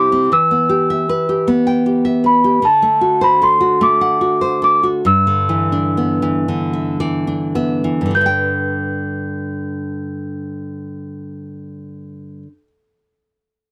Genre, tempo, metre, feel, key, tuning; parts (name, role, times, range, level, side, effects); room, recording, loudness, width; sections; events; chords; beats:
children's music, lullaby; 33-52 BPM (dotted quarters); 6/8; straight; G major; A4 = 437 Hz
large celesta; melody; 0.0-12.6 s; A5 to G6; -17 LUFS; equal
nylon-string guitar; accompaniment; 0.0-12.7 s; G2 to G5; -20 LUFS; equal
light reverb; cassette tape; -16 LUFS; mono
0.0-8.1 A section; 8.1-11.7 B section
slowing down 2.6-8.1; nylon-string guitar fill 6.5-8.1
0.3 Em; 2.6 D7; 5.1 G6; 8.1 G
| 0.32 1.48 | 2.64 3.81 | 5.07 6.48 | 8.14 9.92